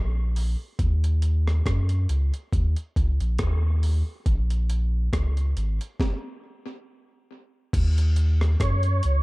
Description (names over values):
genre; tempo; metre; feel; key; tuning
dub reggae; 69 BPM; 4/4; swing 55% on 16ths; Eb minor; A4 = 440 Hz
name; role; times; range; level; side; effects
soft dub sub bass; bass; 0.0-9.2 s; Ab1 to Gb2; -22 LUFS; equal; none
breakbeat sampler-style drum kit; drums; 0.4-9.2 s; crash cymbal, hi-hat, kick drum, rim click, snare drum; -27 LUFS; equal; overdrive
tonewheel organ; melody; 8.6-9.2 s; Db5; -28 LUFS; right 2 dB; overdrive, chorus vibrato, slow rotary speaker
room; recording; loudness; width
little or no reverb; dark, warm production; -22 LUFS; side -22 dB against mid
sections
0.0-7.7 A section; 7.7-9.2 B section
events
stop 6.0-7.7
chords
0.0 N.C.; 0.8 Eb7(no3); 4.3 Bbm; 7.7 Ebm7